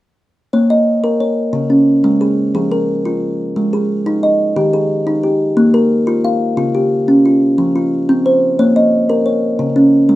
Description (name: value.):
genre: southern african traditional.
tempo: 119 BPM (dotted quarters).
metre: 12/8.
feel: straight.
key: Bb dorian.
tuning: A4 = 439 Hz.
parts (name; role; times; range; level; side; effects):
kalimba; arpeggios; 0.5-10.2 s; Db3 to F5; -11 LUFS; equal; none.
room: light reverb.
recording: minimal, uncompressed stereo recording.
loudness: -12 LUFS.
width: side -16 dB against mid.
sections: 0.5-10.2 A section.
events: none.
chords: 0.5 Bbm; 1.5 Db5; 2.5 Fm; 3.6 Ab5; 4.6 Eb; 5.6 Bb5; 6.6 Db; 7.6 F5; 8.6 Bbm; 9.6 Db5.